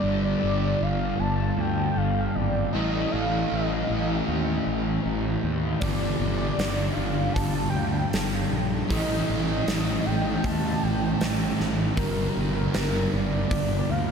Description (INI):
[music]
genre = rock, shoegaze and dream pop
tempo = 78 BPM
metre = 4/4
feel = straight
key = G minor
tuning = A4 = 441 Hz
[part]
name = warm velvety synth lead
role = melody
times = 0.0-14.1 s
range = Bb4 to A5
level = -31 LUFS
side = equal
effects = chorus, analog delay
[part]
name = fuzz guitar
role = riff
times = 0.0-14.1 s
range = G2 to A3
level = -26 LUFS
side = equal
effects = distortion, wide subtle chorus
[part]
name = fuzz fingered electric bass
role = bass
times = 0.0-14.1 s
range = G1 to Eb2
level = -29 LUFS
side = equal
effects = overdrive
[part]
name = huge arena drum kit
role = drums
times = 5.8-13.7 s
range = hi-hat, kick drum, snare drum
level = -30 LUFS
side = right 1 dB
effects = none
[sound]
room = wet huge ambient reverb, RT60 8.3 s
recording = dreamy mix soaked in reverb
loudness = -23 LUFS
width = side -6 dB against mid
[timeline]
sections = 0.0-14.1 A section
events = none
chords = 0.0 G5; 2.7 A5; 5.8 G5; 8.9 A5; 12.0 Gm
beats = 0.42 1.19 1.97 | 2.74 3.51 4.28 5.05 | 5.82 6.59 7.36 8.13 | 8.90 9.66 10.43 11.20 | 11.97 12.74 13.51